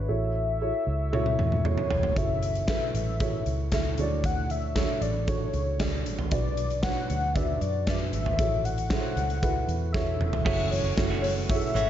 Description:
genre	piano-driven pop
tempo	116 BPM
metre	4/4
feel	straight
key	F# minor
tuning	A4 = 440 Hz
part	warm velvety synth lead	melody	0.0-11.9 s	C#5 to F#5	-31 LUFS	left 3 dB	chorus
part	dark upright piano	accompaniment	0.0-11.9 s	A2 to E5	-33 LUFS	right 6 dB	none
part	vintage muted fingered electric bass	bass	0.0-11.9 s	E1 to F#2	-30 LUFS	equal	none
part	huge arena drum kit	drums	1.1-11.9 s	crash cymbal, hi-hat, kick drum, snare drum, toms	-29 LUFS	equal	none
part	direct-recorded clean electric guitar	riff	10.4-11.9 s	F#2 to F#4	-33 LUFS	right 7 dB	spring reverb
room	light reverb, studio reverb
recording	nothing above 7.7 kHz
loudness	-24 LUFS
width	side -11 dB against mid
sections	0.0-10.5 A section; 10.5-11.9 B section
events	drum fill 1.1-2.2, 9.9-10.5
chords	0.1 A6; 2.2 F#m7; 4.0 Dmaj7; 6.3 Bm; 8.4 A6; 10.5 F#m7

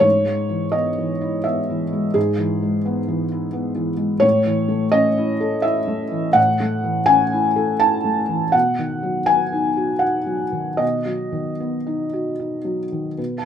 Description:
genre	neoclassical minimalist piano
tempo	73-88 BPM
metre	3/4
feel	rubato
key	unclear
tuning	A4 = 440 Hz
part	felt-muted upright piano	solo	0.0-13.4 s	G#2 to A5	-18 LUFS	equal	none
room	light reverb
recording	minimal, uncompressed stereo recording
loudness	-18 LUFS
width	side -8 dB against mid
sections	0.0-13.2 A section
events	none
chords	0.0 E/G#; 4.2 A; 8.5 B

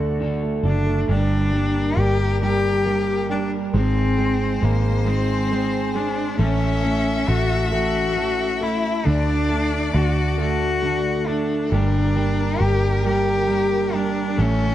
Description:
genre	six-eight pop ballad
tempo	45 BPM (dotted quarters)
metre	6/8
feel	straight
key	G harmonic minor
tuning	A4 = 442 Hz
part	rich cello	melody	0.0-14.7 s	Bb3 to G4	-23 LUFS	left 2 dB	analog delay
part	warm concert grand piano	accompaniment	0.0-14.7 s	D3 to A3	-26 LUFS	right 6 dB	none
part	electric guitar at the edge of break-up	arpeggios	0.0-14.7 s	G2 to A4	-28 LUFS	left 5 dB	lush chorus, analog delay
part	vintage muted fingered electric bass	bass	0.0-14.7 s	F#1 to D2	-22 LUFS	equal	none
part	clear chamber violin section	second line	1.1-14.7 s	A4 to E5	-31 LUFS	left 1 dB	analog delay
room	light reverb, small room ambience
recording	dark, warm production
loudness	-18 LUFS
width	side -12 dB against mid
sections	0.0-1.1 A section; 1.1-14.7 B section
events	none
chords	0.0 D; 1.1 Gm; 3.7 Ab; 6.4 A; 9.1 D; 11.7 Gm

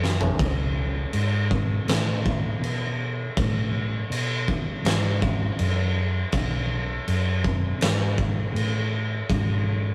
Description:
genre	stoner and doom metal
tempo	81 BPM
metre	4/4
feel	straight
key	unclear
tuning	A4 = 435 Hz
part	hollow-body short-scale fingered electric bass	bass	0.0-9.9 s	B1 to B2	-28 LUFS	equal	overdrive
part	oversized low-tuned drum kit	drums	0.0-9.5 s	crash cymbal, kick drum, snare drum, toms	-28 LUFS	equal	none
room	light reverb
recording	rough rehearsal-room recording, tube saturation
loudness	-25 LUFS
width	mono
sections	0.0-9.9 A section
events	drum fill 0.0-0.4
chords	none

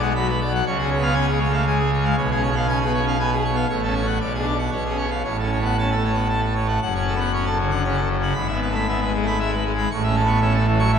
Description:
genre	classical, organ toccata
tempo	117 BPM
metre	3/4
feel	straight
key	F# minor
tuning	A4 = 441 Hz
part	pipe organ, full organ	solo	0.0-11.0 s	F#1 to C#6	-19 LUFS	equal	none
room	wet church reverb, RT60 2.7 s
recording	minimal, uncompressed stereo recording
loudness	-19 LUFS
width	side -7 dB against mid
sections	0.0-6.8 A section; 6.8-11.0 A section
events	none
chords	0.0 Bm; 0.7 C#; 2.2 C#7/B; 3.7 F#m/A; 4.2 G#m7b5/B; 4.7 C#7/B; 5.3 F#m/A; 6.8 F#m; 8.4 E/G#; 9.9 A

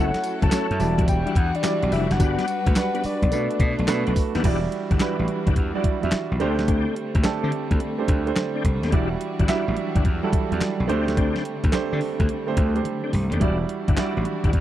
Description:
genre	R&B, new jack swing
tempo	107 BPM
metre	4/4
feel	swing 67% on 16ths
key	E minor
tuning	A4 = 441 Hz
part	soft octave-layered synth lead	melody	0.0-3.8 s	D5 to A5	-28 LUFS	left 4 dB	chorus, tape echo
part	warm grand piano	accompaniment	0.0-14.6 s	F#3 to E5	-27 LUFS	right 8 dB	none
part	warm symphonic string section	sustained chords	0.0-14.6 s	D3 to B4	-31 LUFS	left 4 dB	none
part	tonewheel organ	stabs	0.0-14.5 s	G3 to G4	-30 LUFS	left 8 dB	chorus vibrato, fast rotary speaker
part	gritty slap bass	bass	0.0-14.6 s	E1 to D3	-24 LUFS	left 1 dB	overdrive
part	crisp 8-bit digital drum machine	drums	0.1-14.6 s	crash cymbal, handclaps, hi-hat, kick drum, snare drum, tambourine, toms	-22 LUFS	equal	none
room	little or no reverb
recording	dry, close 1970s-style studio recording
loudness	-20 LUFS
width	side -12 dB against mid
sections	0.0-4.4 A section; 4.4-14.6 B section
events	drum fill 12.9-13.4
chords	0.0 F#m7; 0.8 Em9; 2.2 Gmaj7; 3.3 Bm7; 4.4 Em9; 6.4 D7sus4; 8.9 Em9; 10.9 D7sus4; 13.4 Em9

